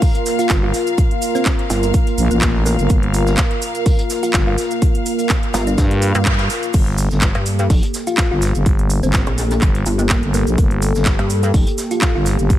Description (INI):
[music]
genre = bass house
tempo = 125 BPM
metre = 4/4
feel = swing 54% on 16ths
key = G minor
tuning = A4 = 440 Hz
[part]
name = dark analog pad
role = sustained chords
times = 0.0-12.6 s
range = Bb3 to Bb4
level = -23 LUFS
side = equal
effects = chorus, sidechain pumping
[part]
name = electronic kick drum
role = drums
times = 0.0-12.6 s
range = none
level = -16 LUFS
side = equal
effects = none
[part]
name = house drum kit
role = drums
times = 0.0-12.6 s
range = crash cymbal, handclaps, hi-hat, shaker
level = -23 LUFS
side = right 1 dB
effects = none
[part]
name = jazz brush drum kit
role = drums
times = 0.0-12.6 s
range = hi-hat, shaker, snare drum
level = -34 LUFS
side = equal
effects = none
[part]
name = rich studio string section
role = texture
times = 0.0-6.7 s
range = F5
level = -28 LUFS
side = left 4 dB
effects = sidechain pumping
[part]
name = thumb-piano-like synth pluck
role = melody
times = 0.4-12.3 s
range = Bb3 to F4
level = -24 LUFS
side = equal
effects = chorus, ping-pong delay
[part]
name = growling FM bass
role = bass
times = 0.5-12.6 s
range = G1 to G2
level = -17 LUFS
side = equal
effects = tube saturation, sidechain pumping
[part]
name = pulsing pluck wobble bass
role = bass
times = 1.7-1.9, 5.5-11.6 s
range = F1 to G2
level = -18 LUFS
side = equal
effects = chorus, tube saturation, sidechain pumping
[sound]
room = light reverb, small room reverb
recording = none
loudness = -14 LUFS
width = side -13 dB against mid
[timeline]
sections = 0.0-6.7 A section; 6.7-12.6 A section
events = drop 0.0-6.7, 6.7-12.6; band accent 6.3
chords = 0.0 Gm; 6.7 Gmadd9